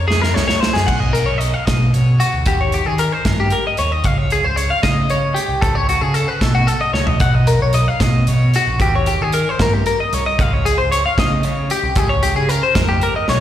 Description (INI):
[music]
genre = math rock and midwest emo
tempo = 76 BPM (dotted quarters)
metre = 6/8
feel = straight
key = Db lydian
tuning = A4 = 441 Hz
[part]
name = twelve-string electric guitar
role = arpeggios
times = 0.0-13.4 s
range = Gb4 to Gb5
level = -18 LUFS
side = left 2 dB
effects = wide subtle chorus, slapback echo
[part]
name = overdriven picked electric bass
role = bass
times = 0.0-13.4 s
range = Bb1 to Eb3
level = -18 LUFS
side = equal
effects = none
[part]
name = modern studio drum kit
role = drums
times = 0.1-13.4 s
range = crash cymbal, hi-hat, kick drum, snare drum, toms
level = -20 LUFS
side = right 1 dB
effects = none
[sound]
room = little or no reverb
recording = live gig heard through the venue's PA, recital hall reverb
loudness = -14 LUFS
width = side -11 dB against mid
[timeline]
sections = 0.9-13.4 A section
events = drum fill 0.1-0.9, 7.0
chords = 0.0 Dbmaj7; 0.9 Cb; 2.5 Eb; 4.1 Dbmaj9; 5.6 Gbm/Db; 7.2 Cbmaj7; 8.8 Eb6; 10.4 Dbmaj9; 12.0 Db6